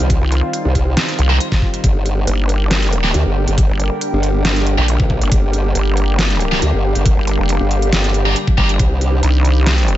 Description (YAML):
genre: heavy wobble dubstep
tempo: 138 BPM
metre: 4/4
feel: half-time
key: G minor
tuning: A4 = 440 Hz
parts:
  - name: supersaw pad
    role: sustained chords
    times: 0.0-10.0 s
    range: D3 to G4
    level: -24 LUFS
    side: right 1 dB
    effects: sidechain pumping, low-pass filter
  - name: formant-sweep wobble bass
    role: bass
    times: 0.0-9.2 s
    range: G1 to D2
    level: -16 LUFS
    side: equal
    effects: chorus, overdrive
  - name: dubstep drum kit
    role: drums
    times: 0.0-10.0 s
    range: hi-hat, snare drum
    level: -20 LUFS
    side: equal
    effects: studio reverb
  - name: warbly tape-like pad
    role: texture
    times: 0.0-10.0 s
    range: D4 to G5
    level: -26 LUFS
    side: equal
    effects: chorus, built-in reverb, sidechain pumping
  - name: electronic kick drum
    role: drums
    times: 0.1-8.9 s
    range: none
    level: -15 LUFS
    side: equal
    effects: overdrive, studio reverb
  - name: vowel-sweep wobble bass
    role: bass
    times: 0.2-10.0 s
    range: F1 to C2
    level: -15 LUFS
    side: equal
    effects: chorus, overdrive
  - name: tight distorted guitar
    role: stabs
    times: 1.3-8.7 s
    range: Bb3 to C5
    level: -23 LUFS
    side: right 1 dB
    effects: distortion, dub echo
room: little or no reverb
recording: nothing above 7.9 kHz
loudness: -13 LUFS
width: side -14 dB against mid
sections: 0.0-10.0 A section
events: none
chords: 0.0 Cm; 1.8 Gm; 8.8 Cm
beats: | 0.10 0.53 0.97 1.40 | 1.84 2.27 2.71 3.14 | 3.58 4.01 4.45 4.88 | 5.32 5.75 6.19 6.62 | 7.06 7.49 7.92 8.36 | 8.79 9.23 9.66